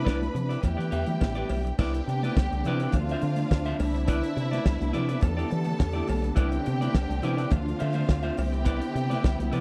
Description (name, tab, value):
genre	disco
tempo	105 BPM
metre	4/4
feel	straight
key	C major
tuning	A4 = 440 Hz
part	clear studio string section	second line	0.0-9.6 s	E4 to B5	-38 LUFS	equal	none
part	semi-hollow electric guitar	accompaniment	0.0-9.6 s	E4 to E5	-36 LUFS	equal	spring reverb
part	dark studio string section	sustained chords	0.0-9.6 s	C3 to E4	-35 LUFS	equal	none
part	fingered electric bass with an envelope filter	bass	0.0-9.6 s	A1 to E3	-31 LUFS	equal	none
part	damped 70s drum kit	drums	0.1-9.6 s	crash cymbal, hi-hat, kick drum, snare drum	-26 LUFS	equal	none
part	cowbell	percussion	0.1-9.4 s	none	-45 LUFS	equal	none
part	congas	percussion	0.2-9.6 s	none	-39 LUFS	equal	none
room	little or no reverb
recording	dry, close 1970s-style studio recording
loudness	-27 LUFS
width	mono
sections	0.0-1.8 A section; 1.8-9.6 B section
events	none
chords	0.0 Cmaj9; 0.6 Em7; 1.8 Cmaj9; 2.9 Dm9; 3.8 Cmaj9; 5.2 Em7; 6.4 Cmaj9; 7.5 Dm9; 8.4 Cmaj9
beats	0.07 0.64 1.22 | 1.79 2.37 2.94 3.51 | 4.08 4.66 5.23 5.80 | 6.38 6.95 7.52 8.09 | 8.67 9.24